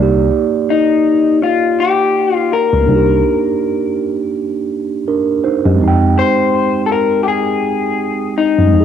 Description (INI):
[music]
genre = hip hop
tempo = 82 BPM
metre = 4/4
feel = swing 58% on 16ths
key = C minor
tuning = A4 = 438 Hz
[part]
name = mellow tine electric piano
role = accompaniment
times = 0.0-8.8 s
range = Ab3 to G5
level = -16 LUFS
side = right 6 dB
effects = slow stereo tremolo, cassette tape, low-pass filter
[part]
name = tine electric piano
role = bass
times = 0.0-8.8 s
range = C2 to F#2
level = -13 LUFS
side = left 1 dB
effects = overdrive, fast stereo tremolo, transformer saturation
[part]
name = electric guitar through a small old amp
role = melody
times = 0.7-8.8 s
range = Eb4 to C5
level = -14 LUFS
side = left 7 dB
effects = low-pass filter, cassette tape, tape echo
[sound]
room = moderate spring reverb, RT60 1.4 s, digital ambience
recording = home recording on cassette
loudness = -12 LUFS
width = side -8 dB against mid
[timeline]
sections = 0.0-8.8 A section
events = none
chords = 0.0 Cm7; 5.8 Fm7